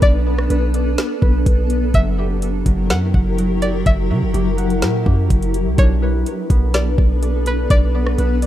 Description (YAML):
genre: hip hop, atmospheric cloud-rap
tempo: 125 BPM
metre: 4/4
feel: half-time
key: B minor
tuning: A4 = 436 Hz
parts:
  - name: string-like resonator pluck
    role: melody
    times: 0.0-8.5 s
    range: B4 to F#5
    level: -23 LUFS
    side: left 1 dB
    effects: chorus, low-pass filter, tape echo
  - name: granular cloud pad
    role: sustained chords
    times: 0.0-8.5 s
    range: F#3 to B4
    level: -22 LUFS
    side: left 2 dB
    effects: built-in reverb, sidechain pumping
  - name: concert harp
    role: arpeggios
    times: 0.0-8.5 s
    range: F#3 to F#5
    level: -26 LUFS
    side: right 1 dB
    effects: low-pass filter, tape echo
  - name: warm 808-style bass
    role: bass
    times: 0.0-8.5 s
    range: F#1 to C#3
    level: -18 LUFS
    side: equal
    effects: none
  - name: smooth R&B drum kit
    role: drums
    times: 0.0-8.5 s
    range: hi-hat, kick drum, rim click, snare drum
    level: -17 LUFS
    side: equal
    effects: none
  - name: downlifter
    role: sound effects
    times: 0.0-1.9 s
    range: none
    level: -47 LUFS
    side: equal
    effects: none
room: little or no reverb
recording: rough home demo mix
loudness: -15 LUFS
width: side -12 dB against mid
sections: 0.0-8.5 A section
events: none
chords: 0.0 Bm7; 1.9 F#7b9; 5.8 Bm9